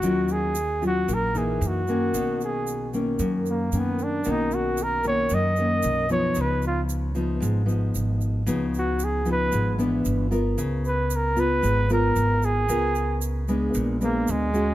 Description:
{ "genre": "bossa nova", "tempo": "114 BPM", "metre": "4/4", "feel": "straight", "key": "unclear", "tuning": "A4 = 440 Hz", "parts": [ { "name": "warm flugelhorn", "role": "melody", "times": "0.0-14.7 s", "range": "Ab3 to D#5", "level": "-26 LUFS", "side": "right 1 dB", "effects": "none" }, { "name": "nylon-string guitar", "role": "accompaniment", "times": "0.0-14.7 s", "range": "F#2 to Bb4", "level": "-25 LUFS", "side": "left 1 dB", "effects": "none" }, { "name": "upright bass", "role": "bass", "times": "0.0-14.7 s", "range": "G1 to Gb2", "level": "-27 LUFS", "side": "right 1 dB", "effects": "none" }, { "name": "egg shaker", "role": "percussion", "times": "0.0-14.7 s", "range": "none", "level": "-38 LUFS", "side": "right 7 dB", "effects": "none" } ], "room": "light reverb", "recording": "none", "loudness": "-22 LUFS", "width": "side -14 dB against mid", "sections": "0.0-14.7 A section", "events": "flugelhorn solo 0.0-14.7", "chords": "0.0 Ebm9; 1.6 Gb6; 2.1 Bmaj9; 6.4 Db9; 10.1 G6; 10.6 Db6; 13.7 Bb7b9", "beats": "| 0.03 0.55 1.08 1.61 | 2.14 2.67 3.19 3.72 | 4.25 4.78 5.31 5.83 | 6.36 6.89 7.42 7.95 | 8.47 9.00 9.53 10.06 | 10.58 11.11 11.64 12.17 | 12.69 13.22 13.75 14.28" }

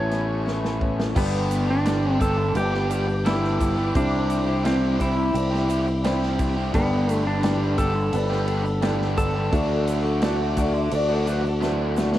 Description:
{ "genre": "folk rock and heartland rock", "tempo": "86 BPM", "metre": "4/4", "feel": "straight", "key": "unclear", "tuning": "A4 = 441 Hz", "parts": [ { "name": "pedal steel guitar", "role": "melody", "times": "0.0-11.6 s", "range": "B3 to C#5", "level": "-26 LUFS", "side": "equal", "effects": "cassette tape, analog delay" }, { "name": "picked swing-style acoustic guitar", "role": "accompaniment", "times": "0.0-12.2 s", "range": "A2 to A4", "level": "-32 LUFS", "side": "left 8 dB", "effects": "cassette tape" }, { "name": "warm studio string section", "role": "sustained chords", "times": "0.0-12.2 s", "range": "A4 to D6", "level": "-38 LUFS", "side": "equal", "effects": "cassette tape" }, { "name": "biting overdriven guitar", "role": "riff", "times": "0.0-12.2 s", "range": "G2 to A4", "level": "-29 LUFS", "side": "right 1 dB", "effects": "cassette tape" }, { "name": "fingered electric bass", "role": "bass", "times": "0.0-12.2 s", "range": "G1 to D2", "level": "-24 LUFS", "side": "equal", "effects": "none" }, { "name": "natural country drum kit", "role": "drums", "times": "0.1-12.2 s", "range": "crash cymbal, hi-hat, kick drum, ride cymbal, snare drum", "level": "-28 LUFS", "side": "equal", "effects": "cassette tape" }, { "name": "warm upright piano", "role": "accompaniment", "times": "1.1-12.1 s", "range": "D4 to E5", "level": "-35 LUFS", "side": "right 8 dB", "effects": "none" }, { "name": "tube shaker", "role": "percussion", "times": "1.2-12.2 s", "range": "none", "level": "-47 LUFS", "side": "right 11 dB", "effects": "none" }, { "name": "electric slide guitar", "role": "second line", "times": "10.3-12.2 s", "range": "D4 to F#5", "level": "-29 LUFS", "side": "left 1 dB", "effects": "cassette tape, analog delay" } ], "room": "moderate booth ambience, RT60 0.2 s", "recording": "home recording on cassette", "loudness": "-20 LUFS", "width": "side -13 dB against mid", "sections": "0.0-1.2 A section; 1.2-12.2 B section", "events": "drum fill 0.5-1.2, 11.6-12.2", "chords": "0.0 Aadd9; 1.2 Gadd9; 4.0 Cadd9; 6.7 Gadd9; 9.5 D", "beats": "0.47 | 1.17 1.86 2.56 3.26 | 3.96 4.65 5.35 6.05 | 6.74 7.44 8.14 8.83 | 9.53 10.22 10.92 11.62" }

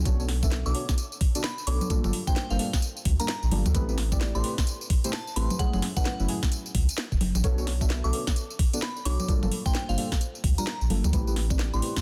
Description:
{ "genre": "UK garage, two-step garage", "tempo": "130 BPM", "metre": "4/4", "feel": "swing 62% on 16ths", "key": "unclear", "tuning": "A4 = 442 Hz", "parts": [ { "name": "deep mellow chord stab", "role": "stabs", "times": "0.0-11.9 s", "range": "F#3 to E5", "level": "-35 LUFS", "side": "equal", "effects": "chorus, phaser" }, { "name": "soft dub sub bass", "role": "bass", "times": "0.0-11.8 s", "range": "E1 to D2", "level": "-29 LUFS", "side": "equal", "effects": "none" }, { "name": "electronic kick drum", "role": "drums", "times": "0.1-12.0 s", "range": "none", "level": "-28 LUFS", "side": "equal", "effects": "none" }, { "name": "garage drum kit", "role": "drums", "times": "0.1-12.0 s", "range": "congas, hi-hat, snare drum, tambourine", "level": "-34 LUFS", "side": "equal", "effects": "soft clipping on snare" }, { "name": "glassy synth bell", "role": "melody", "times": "0.7-11.8 s", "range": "F5 to D6", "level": "-39 LUFS", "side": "equal", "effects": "chorus, tape echo" } ], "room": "digital ambience", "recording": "dense, heavily limited modern master", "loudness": "-27 LUFS", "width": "mono", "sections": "0.0-12.0 A section", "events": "none", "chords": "0.1 Bm7; 1.9 Gm7; 3.7 Am7; 5.6 F#m7; 7.4 Bm7; 9.3 Gm7; 11.1 Am7", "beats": "| 0.05 0.52 0.98 1.44 | 1.90 2.36 2.82 3.29 | 3.75 4.21 4.67 5.13 | 5.59 6.05 6.52 6.98 | 7.44 7.90 8.36 8.82 | 9.29 9.75 10.21 10.67 | 11.13 11.59" }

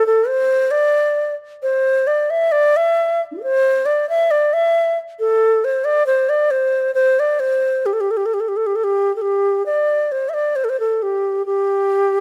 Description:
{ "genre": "chinese traditional", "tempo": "67 BPM", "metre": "2/4", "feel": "straight", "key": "G zhi mode", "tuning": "A4 = 443 Hz", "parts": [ { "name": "bright reedy low xiao", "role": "solo", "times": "0.0-12.2 s", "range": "D4 to E5", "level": "-18 LUFS", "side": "equal", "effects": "none" } ], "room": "light reverb", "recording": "close, detailed microphones", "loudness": "-18 LUFS", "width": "mono", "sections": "0.0-9.7 A section; 9.7-12.2 B section", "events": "none", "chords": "none", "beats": "| 0.73 1.63 | 2.53 3.44 | 4.33 5.21 | 6.09 6.97 | 7.85 8.76 | 9.66 10.56 | 11.45" }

